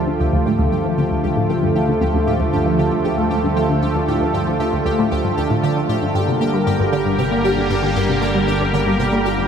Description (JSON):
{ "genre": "ambient, sequencer-driven space music", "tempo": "116 BPM", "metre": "4/4", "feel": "straight", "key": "D minor", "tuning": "A4 = 440 Hz", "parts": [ { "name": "sweeping resonant pad", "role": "sustained chords", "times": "0.0-9.5 s", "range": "D3 to Bb4", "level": "-18 LUFS", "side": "right 1 dB", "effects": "chorus, shimmer reverb" }, { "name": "resonant blip pluck", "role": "riff", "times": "0.0-9.4 s", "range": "D2 to Bb3", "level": "-20 LUFS", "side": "equal", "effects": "phaser, ensemble chorus, ping-pong delay" }, { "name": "analog drone", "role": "bass", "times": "0.0-9.5 s", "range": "G1 to D2", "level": "-26 LUFS", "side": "equal", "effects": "chorus, tube saturation" }, { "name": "pulsing gated texture", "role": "texture", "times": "0.0-9.5 s", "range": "G4 to G5", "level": "-28 LUFS", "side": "equal", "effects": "chorus, built-in reverb, shimmer reverb" } ], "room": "wet huge ambient reverb, RT60 8.8 s", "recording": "none", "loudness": "-16 LUFS", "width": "side -7 dB against mid", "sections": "0.0-9.5 A section", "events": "none", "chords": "0.0 Dm; 6.1 Gm", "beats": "0.46 0.98 1.49 | 2.01 2.53 3.05 3.56 | 4.08 4.60 5.12 5.63 | 6.15 6.67 7.18 7.70 | 8.22 8.73 9.25" }